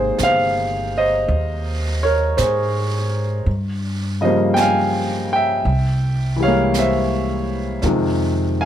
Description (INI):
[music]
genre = jazz ballad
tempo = 55 BPM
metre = 4/4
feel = swing 68% on 8ths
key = Ab major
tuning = A4 = 440 Hz
[part]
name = clear concert grand piano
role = accompaniment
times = 0.0-8.7 s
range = C3 to Ab5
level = -18 LUFS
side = equal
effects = none
[part]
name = upright bass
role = bass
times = 0.0-8.7 s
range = G1 to Ab2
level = -22 LUFS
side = equal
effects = none
[part]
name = jazz brush drum kit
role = drums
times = 0.2-8.7 s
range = brushed snare drum, hi-hat, snare drum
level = -32 LUFS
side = right 3 dB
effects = none
[sound]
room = light reverb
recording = none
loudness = -17 LUFS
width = side -10 dB against mid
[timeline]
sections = 0.0-8.7 A section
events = none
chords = 0.0 Abmaj7; 3.5 Gm7b5; 5.6 C7b13; 7.8 Fm7